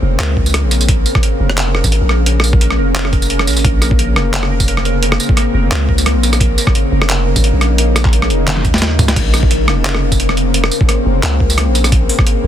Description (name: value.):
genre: half-time drum and bass.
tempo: 174 BPM.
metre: 4/4.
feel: swing 54% on 16ths, half-time.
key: Bb minor.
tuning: A4 = 444 Hz.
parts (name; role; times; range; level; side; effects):
bowed-like drone; sustained chords; 0.0-12.5 s; Db3 to Eb4; -19 LUFS; left 1 dB; built-in reverb, sidechain pumping.
long sustained 808-style bass; bass; 0.0-12.5 s; F1 to Eb2; -15 LUFS; equal; none.
pulsing gated texture; texture; 0.0-12.5 s; Bb4; -24 LUFS; equal; chorus, built-in reverb.
boom bap sampler-style drum kit; drums; 0.2-12.3 s; crash cymbal, handclaps, hi-hat, rim click, snare drum, tambourine, toms; -17 LUFS; equal; overdrive, soft clipping on snare.
electronic kick drum; drums; 0.4-12.2 s; none; -14 LUFS; equal; overdrive.
room: little or no reverb.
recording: dense, heavily limited modern master.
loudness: -11 LUFS.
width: side -10 dB against mid.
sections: 0.0-12.5 A section.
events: drum fill 8.5-9.2.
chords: 0.0 Bbmadd9.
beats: 0.20 0.54 | 0.89 1.23 1.58 1.92 | 2.27 2.61 2.96 3.30 | 3.65 3.99 4.33 4.68 | 5.03 5.37 5.71 6.06 | 6.40 6.75 7.09 7.44 | 7.78 8.13 8.47 8.82 | 9.16 9.51 9.85 10.20 | 10.54 10.89 11.23 11.58 | 11.92 12.27.